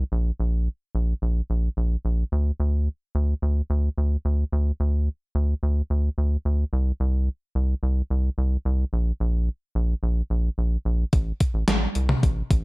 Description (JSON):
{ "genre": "synth-pop", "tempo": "109 BPM", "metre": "4/4", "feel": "straight", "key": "unclear", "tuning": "A4 = 440 Hz", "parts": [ { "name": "rubbery square bass", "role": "bass", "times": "0.0-12.6 s", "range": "A1 to D2", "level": "-22 LUFS", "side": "equal", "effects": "none" }, { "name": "gated 80s digital drum machine", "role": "drums", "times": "11.1-12.6 s", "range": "hi-hat, kick drum, snare drum, toms", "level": "-22 LUFS", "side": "equal", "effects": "gated reverb, gated reverb snare, overdrive" } ], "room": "little or no reverb", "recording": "dark, warm production", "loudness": "-22 LUFS", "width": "side -24 dB against mid", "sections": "0.0-11.1 A section; 11.1-12.6 B section", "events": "none", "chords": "none", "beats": "| 0.12 0.67 1.22 1.77 | 2.32 2.87 3.42 3.98 | 4.53 5.08 5.63 6.18 | 6.73 7.28 7.83 8.38 | 8.93 9.48 10.03 10.58 | 11.13 11.68 12.23" }